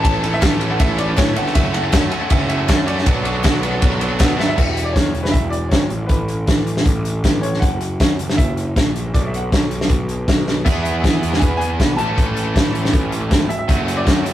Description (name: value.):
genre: indie rock.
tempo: 158 BPM.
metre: 4/4.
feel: straight.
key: A major.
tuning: A4 = 441 Hz.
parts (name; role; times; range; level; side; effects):
bright upright piano; melody; 0.0-14.3 s; B4 to A5; -26 LUFS; equal; none.
cranked stack guitar; riff; 0.0-4.6, 10.7-14.3 s; E3 to A4; -26 LUFS; left 4 dB; overdrive, tremolo.
distorted electric guitar; riff; 0.0-4.6, 10.6-14.3 s; E3 to A4; -24 LUFS; right 4 dB; overdrive.
fuzz picked electric bass; bass; 0.0-14.3 s; E1 to E3; -22 LUFS; equal; overdrive.
loose indie drum kit; drums; 0.0-14.3 s; crash cymbal, hi-hat, kick drum, ride cymbal, snare drum, splash cymbal; -17 LUFS; equal; none.
group handclap; percussion; 0.4-4.3 s; none; -35 LUFS; left 3 dB; none.
room: moderate studio reverb, RT60 0.6 s.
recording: rough rehearsal-room recording, tube saturation.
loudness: -15 LUFS.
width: side -12 dB against mid.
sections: 0.0-4.6 A section; 4.6-14.3 B section.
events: drum fill 4.4, 10.5.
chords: 0.0 A; 1.6 F#m; 3.1 Bm; 4.6 E; 5.9 Asus2; 7.6 F#7; 9.1 B5; 10.7 E; 12.0 A; 13.7 F#m.